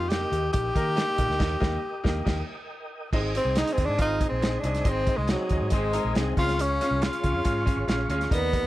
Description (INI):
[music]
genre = uptempo 1960s-style soul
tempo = 139 BPM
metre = 4/4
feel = straight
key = Ab major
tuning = A4 = 440 Hz
[part]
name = breathy tenor saxophone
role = melody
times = 0.0-8.7 s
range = Gb3 to G4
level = -27 LUFS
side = equal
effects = none
[part]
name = bright baby grand piano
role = accompaniment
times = 0.0-8.7 s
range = G3 to Bb4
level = -31 LUFS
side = equal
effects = none
[part]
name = mellow tonewheel organ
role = sustained chords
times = 0.0-8.7 s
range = G4 to Eb6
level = -38 LUFS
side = right 1 dB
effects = chorus vibrato, fast rotary speaker
[part]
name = vintage muted fingered electric bass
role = bass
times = 0.0-8.7 s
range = Ab1 to Eb3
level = -30 LUFS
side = equal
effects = none
[part]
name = warm soul drum kit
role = drums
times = 0.1-8.6 s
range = crash cymbal, hi-hat, kick drum, snare drum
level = -28 LUFS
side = equal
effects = none
[part]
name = electric guitar through a small old amp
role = riff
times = 5.7-6.6 s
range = C4 to C5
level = -33 LUFS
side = left 6 dB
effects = tube saturation
[sound]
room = light reverb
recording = none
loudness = -23 LUFS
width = side -16 dB against mid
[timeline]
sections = 0.0-3.1 A section; 3.1-8.7 B section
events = band accent 1.4-3.1; tenor saxophone solo 3.1-8.7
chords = 0.0 Eb; 3.1 Ab; 6.4 Db